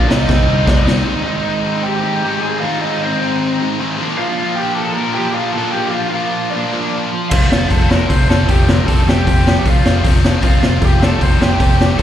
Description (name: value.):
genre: punk rock.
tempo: 154 BPM.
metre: 4/4.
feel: straight.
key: unclear.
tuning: A4 = 441 Hz.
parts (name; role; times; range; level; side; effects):
lead guitar through a small cranked amp; melody; 0.0-12.0 s; C4 to C6; -20 LUFS; equal; overdrive, slapback echo.
biting overdriven guitar; riff; 0.0-12.0 s; F2 to Eb4; -22 LUFS; left 10 dB; slapback echo.
high-gain distorted guitar; riff; 0.0-12.0 s; F2 to Eb4; -24 LUFS; left 2 dB; distortion, slapback echo.
sludgy distorted guitar; riff; 0.0-12.0 s; F2 to C4; -22 LUFS; right 8 dB; overdrive, slapback echo.
picked electric bass; bass; 0.0-1.0, 7.3-12.0 s; F1 to C2; -16 LUFS; equal; none.
raw garage drum kit; drums; 0.1-1.0, 7.3-12.0 s; crash cymbal, hi-hat, kick drum, snare drum; -14 LUFS; equal; none.
room: little or no reverb.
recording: live gig heard through the venue's PA, recital hall reverb.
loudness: -13 LUFS.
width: side -10 dB against mid.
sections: 0.0-1.1 A section; 1.1-12.0 B section.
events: drum fill 0.3-1.1.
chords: 0.1 Cm; 1.1 Ab; 4.0 Bb; 7.3 F.